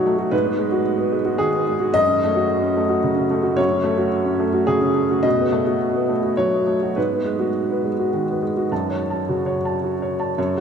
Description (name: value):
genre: neoclassical minimalist piano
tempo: 100-113 BPM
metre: 3/4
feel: rubato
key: F# dorian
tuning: A4 = 440 Hz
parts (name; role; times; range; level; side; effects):
- clear upright piano; solo; 0.0-10.6 s; F#2 to A5; -18 LUFS; equal; none
room: wet cathedral reverb, RT60 4.6 s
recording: recorded in a church or concert hall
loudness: -18 LUFS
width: side -7 dB against mid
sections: 0.0-8.7 A section; 8.7-10.6 B section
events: none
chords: 0.3 G#m7; 2.0 F#m; 5.2 B7; 7.0 G#m7; 8.7 F#m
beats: | 0.33 0.85 1.39 | 1.95 2.50 3.04 | 3.58 4.13 4.68 | 5.25 5.81 6.37 | 6.96 7.56 8.13 | 8.71 9.27 9.82 | 10.37